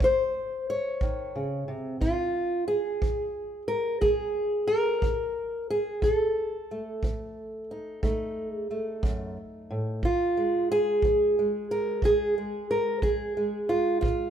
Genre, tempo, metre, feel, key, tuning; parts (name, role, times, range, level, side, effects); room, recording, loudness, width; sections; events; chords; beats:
acoustic country blues, solo or duo; 60 BPM (dotted quarters); 12/8; straight; Bb minor; A4 = 440 Hz
fingerpicked old ladder-braced acoustic guitar; melody; 0.0-14.3 s; F2 to Db5; -26 LUFS; equal
kick drum; drums; 0.0-14.2 s; -29 LUFS; right 1 dB
moderate recital hall reverb, RT60 1.7 s; recorded in a church or concert hall; -25 LUFS; side -9 dB against mid
0.0-10.0 A section; 10.0-14.3 A section
0.0 Eb5; 2.0 Bb5; 6.0 F7; 10.0 Bb7(no3)
0.01 1.01 | 2.02 3.02 4.02 5.03 | 6.03 7.03 8.03 9.03 | 10.03 11.03 12.03 13.03 | 14.03